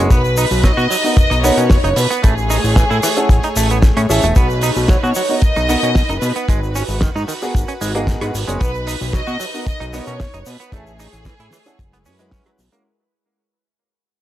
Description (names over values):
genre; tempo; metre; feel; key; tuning
nu-disco, nu disco; 113 BPM; 4/4; straight; B major; A4 = 440 Hz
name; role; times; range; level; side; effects
warm concert grand piano; accompaniment; 0.0-12.8 s; G#3 to F#5; -22 LUFS; equal; none
lush unison pad; sustained chords; 0.0-12.8 s; G#3 to C#5; -27 LUFS; left 1 dB; chorus, sidechain pumping
direct-recorded clean electric guitar; riff; 0.0-12.8 s; D#3 to F#4; -24 LUFS; right 4 dB; wide subtle chorus
fat analog bass; bass; 0.0-12.7 s; E1 to B2; -19 LUFS; equal; none
rich studio violin section; melody; 0.1-12.3 s; G#4 to D#5; -21 LUFS; equal; analog delay
damped 70s drum kit; drums; 0.1-12.8 s; cabasa, hi-hat, rim click, snare drum; -23 LUFS; right 2 dB; none
kick drum; drums; 0.1-12.4 s; none; -14 LUFS; equal; none
egg shaker; percussion; 0.1-12.8 s; none; -29 LUFS; left 4 dB; none
room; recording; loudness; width
studio ambience; dry, gritty hardware recording; -13 LUFS; side -13 dB against mid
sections
0.0-12.9 A section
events
drop 0.0-12.9; fade-out 4.4-12.9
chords
0.1 Bmaj7; 2.2 Amaj7; 4.4 Bmaj7; 6.5 G#m9; 8.6 Bmaj7; 10.7 Amaj7; 11.8 F#9sus4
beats
| 0.11 0.64 1.18 1.71 | 2.24 2.77 3.30 3.83 | 4.36 4.89 5.42 5.95 | 6.49 7.02 7.55 8.08 | 8.61 9.14 9.67 10.20 | 10.73 11.26 11.79 12.33